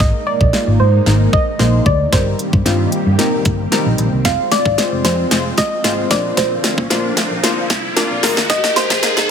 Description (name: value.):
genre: dance-pop.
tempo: 113 BPM.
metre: 4/4.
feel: straight.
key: unclear.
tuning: A4 = 437 Hz.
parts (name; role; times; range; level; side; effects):
soft round pluck; melody; 0.0-9.3 s; C5 to F5; -19 LUFS; right 1 dB; chorus, phaser, ping-pong delay.
glassy digital keys; accompaniment; 0.0-9.3 s; G3 to D5; -22 LUFS; left 3 dB; chorus, sidechain pumping.
string machine, cellos; sustained chords; 0.0-9.3 s; D3 to G4; -23 LUFS; equal; ensemble chorus, sidechain pumping.
vintage muted fingered electric bass; bass; 0.0-9.3 s; F1 to Bb2; -18 LUFS; equal; sidechain pumping.
pop drum kit; drums; 0.0-9.3 s; hi-hat, kick drum, snare drum; -17 LUFS; equal; none.
riser; sound effects; 6.0-9.3 s; none; -22 LUFS; right 1 dB; none.
room: light reverb.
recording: high-pass filter.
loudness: -13 LUFS.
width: side -7 dB against mid.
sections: 0.0-9.3 A section.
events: build-up 0.0-9.3; drum fill 0.0-9.3; filter sweep 0.0-9.3; riser 6.0-9.3.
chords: 0.0 Absus2; 2.1 Eb6/G; 4.2 Fm; 6.1 Bbadd9; 8.2 Absus2.